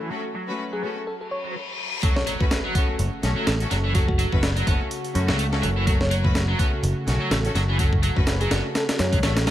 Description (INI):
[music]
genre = breakbeat, breaks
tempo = 125 BPM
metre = 4/4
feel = swing 56% on 16ths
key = unclear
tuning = A4 = 440 Hz
[part]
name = phased analog pad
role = sustained chords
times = 0.0-9.5 s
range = C#3 to F#4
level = -34 LUFS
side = right 1 dB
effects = phaser, chorus, sidechain pumping
[part]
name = biting overdriven guitar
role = riff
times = 0.0-9.5 s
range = E3 to B3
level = -30 LUFS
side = right 1 dB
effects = tremolo, low-pass filter, tape echo
[part]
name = clear studio string section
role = stabs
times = 0.1-9.5 s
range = A3 to B4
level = -31 LUFS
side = left 2 dB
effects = tape echo
[part]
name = bell-like FM electric piano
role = melody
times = 0.7-9.5 s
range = F#4 to C#5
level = -32 LUFS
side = equal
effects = chorus, phaser, telephone sound, tape echo
[part]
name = reverse cymbal and impact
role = sound effects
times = 1.3-3.9 s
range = none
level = -33 LUFS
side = left 2 dB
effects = none
[part]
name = breakbeat sampler-style drum kit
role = drums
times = 2.0-9.5 s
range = hi-hat, kick drum, snare drum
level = -23 LUFS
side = equal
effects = none
[part]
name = modern bright picked electric bass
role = bass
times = 3.0-9.5 s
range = F#1 to F#2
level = -23 LUFS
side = equal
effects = none
[sound]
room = digital ambience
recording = vinyl crackle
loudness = -20 LUFS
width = side -12 dB against mid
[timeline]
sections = 0.0-2.0 A section; 2.0-9.5 B section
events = reverse cymbal 1.3-2.0; drop 2.0-9.5; impact 2.0-4.0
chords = 0.0 F#m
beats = | 0.11 0.59 1.07 1.55 | 2.03 2.51 2.99 3.47 | 3.95 4.43 4.91 5.39 | 5.87 6.35 6.83 7.31 | 7.79 8.27 8.75 9.23